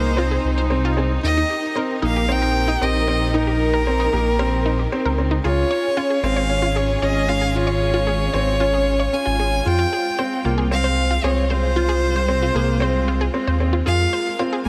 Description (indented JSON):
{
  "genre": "piano and strings electronica",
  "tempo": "114 BPM",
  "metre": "4/4",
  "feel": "straight",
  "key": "F minor",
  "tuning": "A4 = 440 Hz",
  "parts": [
    { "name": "rich violin", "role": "melody", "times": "0.0-14.7 s", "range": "Bb4 to Ab5", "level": "-26 LUFS", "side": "equal", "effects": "none" },
    { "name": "warm studio string section", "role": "sustained chords", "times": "0.0-14.7 s", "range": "Db3 to Bb4", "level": "-30 LUFS", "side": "equal", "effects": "none" },
    { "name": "unison pluck", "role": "arpeggios", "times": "0.0-14.6 s", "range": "Eb4 to Db5", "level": "-31 LUFS", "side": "equal", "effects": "digital delay" },
    { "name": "felt-muted upright piano", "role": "riff", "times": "0.0-14.7 s", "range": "Bb3 to F4", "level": "-26 LUFS", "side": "equal", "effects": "digital delay" },
    { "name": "dark detuned saw bass", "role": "bass", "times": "0.0-14.7 s", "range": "Ab1 to F2", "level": "-24 LUFS", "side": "equal", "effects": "none" }
  ],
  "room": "light reverb, small room ambience",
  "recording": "none",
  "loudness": "-20 LUFS",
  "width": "mono",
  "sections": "0.0-14.7 A section",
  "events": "none",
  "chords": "0.0 Fm (rootless); 1.2 Eb; 5.4 Db; 9.7 Fm"
}